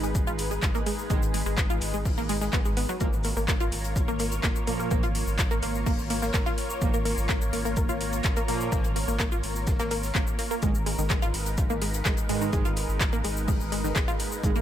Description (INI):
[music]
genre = melodic techno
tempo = 126 BPM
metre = 4/4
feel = straight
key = G# dorian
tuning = A4 = 439 Hz
[part]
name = lush unison pad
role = sustained chords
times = 0.0-14.6 s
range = G#3 to C#5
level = -34 LUFS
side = equal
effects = chorus, phaser, sidechain pumping
[part]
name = wide unison pluck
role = arpeggios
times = 0.0-14.6 s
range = D#3 to E#5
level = -32 LUFS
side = equal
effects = sidechain pumping, dub echo
[part]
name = round analog bass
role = bass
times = 0.0-14.6 s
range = G#1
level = -32 LUFS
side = equal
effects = tube saturation, sidechain pumping
[part]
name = deep house drum kit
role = drums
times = 0.0-14.6 s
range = handclaps, hi-hat, shaker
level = -33 LUFS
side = left 1 dB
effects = overdrive, sidechain pumping on cymbals, sidechain pumping on perc, sidechain pumping on hats
[part]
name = deep reggae drum kit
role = drums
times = 0.0-14.6 s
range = hi-hat, shaker, snare drum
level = -42 LUFS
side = left 3 dB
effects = high-pass filter on hats, high-pass filter on snare, high-pass filter on perc, high-pass filter on room
[part]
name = electronic kick drum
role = drums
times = 0.1-14.5 s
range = none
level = -28 LUFS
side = equal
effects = none
[part]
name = analog synth brass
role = stabs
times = 1.1-14.5 s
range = G#2 to A#3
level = -35 LUFS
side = right 4 dB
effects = chorus, sidechain pumping, dub echo
[sound]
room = little or no reverb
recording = none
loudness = -24 LUFS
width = side -11 dB against mid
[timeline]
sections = 0.0-14.6 A section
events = none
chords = 0.0 G#m; 3.0 A#m/G#; 10.6 G#m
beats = 0.15 0.63 | 1.10 1.58 2.05 2.53 | 3.01 3.48 3.96 4.43 | 4.91 5.39 5.86 6.34 | 6.82 7.29 7.77 8.24 | 8.72 9.20 9.67 10.15 | 10.63 11.10 11.58 12.05 | 12.53 13.01 13.48 13.96 | 14.44